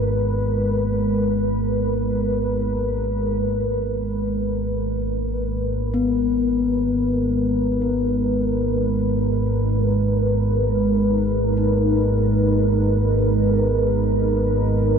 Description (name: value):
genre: dark ambient drone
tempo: free time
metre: none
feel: none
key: G# minor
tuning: A4 = 437 Hz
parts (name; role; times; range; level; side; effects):
- deep dark ambient pad; sustained chords; 0.0-15.0 s; G#3 to B4; -21 LUFS; right 1 dB; chorus, built-in reverb
- gamelan-type bronze metallophone; arpeggios; 0.0-15.0 s; G#3 to D#4; -25 LUFS; left 5 dB; ping-pong delay
- deep rumbling drone; drone; 0.0-15.0 s; G#1 to G#2; -23 LUFS; equal; built-in reverb
room: wet cathedral reverb, RT60 6.3 s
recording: in a vast, echoing space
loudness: -18 LUFS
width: side -6 dB against mid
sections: 0.0-3.4 A section; 3.4-15.0 B section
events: none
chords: 0.0 G#m